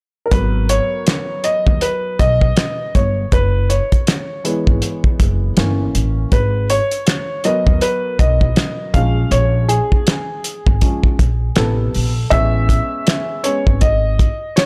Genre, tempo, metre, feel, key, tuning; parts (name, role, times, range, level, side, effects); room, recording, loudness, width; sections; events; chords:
hip hop, jazz-hop; 80 BPM; 4/4; swing 60% on 16ths; G# minor; A4 = 439 Hz
warm upright piano; accompaniment; 0.3-14.7 s; C3 to E#5; -22 LUFS; equal
upright bass; bass; 0.3-14.2 s; F#1 to D#2; -20 LUFS; equal; transformer saturation
cloth-damped thuddy drum kit; drums; 0.3-14.7 s; hi-hat, kick drum, snare drum; -18 LUFS; equal
studio reverb; dry, gritty hardware recording, transformer saturation; -16 LUFS; mono
0.3-12.3 A section; 12.3-14.7 B section
upright piano solo 0.3-12.3, 12.3-14.7
0.3 G#m9; 3.3 F#7sus4; 5.6 Gdim7; 6.3 G#m9; 8.9 A#m7; 11.6 Am9; 12.3 Amaj7